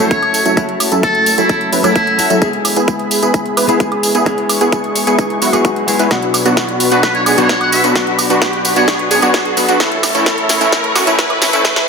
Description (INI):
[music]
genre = EDM, festival progressive house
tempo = 130 BPM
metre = 4/4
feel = straight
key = unclear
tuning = A4 = 440 Hz
[part]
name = trumpet with metal mute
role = melody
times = 0.0-2.3, 6.9-9.3 s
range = E4 to F#5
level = -17 LUFS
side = equal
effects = vintage 12-bit sampler grit, ping-pong delay
[part]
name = direct-recorded clean electric guitar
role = accompaniment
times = 0.0-11.9 s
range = A2 to G#4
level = -21 LUFS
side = left 2 dB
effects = lush chorus, sidechain pumping, ping-pong delay
[part]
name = lush unison pad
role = sustained chords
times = 0.0-11.9 s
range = D4 to C#6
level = -22 LUFS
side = equal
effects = chorus, sidechain pumping
[part]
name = wide unison lead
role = arpeggios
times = 0.0-11.8 s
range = E4 to B4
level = -20 LUFS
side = equal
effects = sidechain pumping, ping-pong delay
[part]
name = supersaw stab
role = riff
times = 0.0-11.8 s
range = F#3 to B4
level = -17 LUFS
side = equal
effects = sidechain pumping, low-pass filter, ping-pong delay
[part]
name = fat analog bass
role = bass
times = 0.0-11.9 s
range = E1 to E2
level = -28 LUFS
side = equal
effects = none
[part]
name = big-room dance drum kit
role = drums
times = 0.0-11.9 s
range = hi-hat, snare drum, tambourine, woodblock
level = -17 LUFS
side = right 1 dB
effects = high-pass filter on hats, high-pass filter on snare, high-pass filter on perc
[part]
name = riser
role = sound effects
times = 3.0-11.9 s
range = none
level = -23 LUFS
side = equal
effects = none
[part]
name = electronic kick drum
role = drums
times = 0.1-11.7 s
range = none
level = -17 LUFS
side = equal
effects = high-pass filter on kick
[sound]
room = moderate digital room reverb, RT60 1.1 s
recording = high-pass filter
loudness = -11 LUFS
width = side -5 dB against mid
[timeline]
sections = 0.0-11.9 A section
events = build-up 0.0-11.9; filter sweep on supersaw synth 0.0-11.9; filter sweep on analog synth lead 0.0-11.9; riser 3.0-11.9; drum fill 6.1-11.9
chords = 0.0 F#m7; 2.4 E; 6.1 Bm; 9.8 A